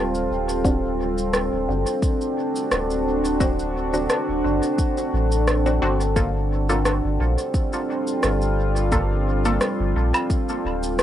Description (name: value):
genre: ambient dub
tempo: 87 BPM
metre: 4/4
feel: swing 54% on 16ths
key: G minor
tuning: A4 = 442 Hz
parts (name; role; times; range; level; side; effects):
- deep dark ambient pad; sustained chords; 0.0-11.0 s; G3 to A4; -23 LUFS; equal; chorus, built-in reverb, cassette tape
- warm sub bass; bass; 0.0-11.0 s; D1 to Bb1; -24 LUFS; equal; none
- electronic cabasa, rim click and woodblock; drums; 0.1-11.0 s; none; -26 LUFS; equal; cassette tape, dub echo
- filtered dub chord stab; stabs; 0.6-9.6 s; Bb3 to A4; -27 LUFS; left 1 dB; phaser, cassette tape, dub echo, plate reverb
- electronic kick drum; drums; 0.6-10.4 s; none; -23 LUFS; equal; cassette tape
room: moderate booth ambience, RT60 0.2 s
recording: home recording on cassette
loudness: -20 LUFS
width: side -11 dB against mid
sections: 0.0-11.0 A section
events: none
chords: 0.0 G7sus2; 0.6 D7; 6.2 Gm9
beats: | 0.65 1.34 2.03 2.71 | 3.40 4.09 4.78 5.47 | 6.16 6.85 7.54 8.23 | 8.92 9.61 10.30 10.99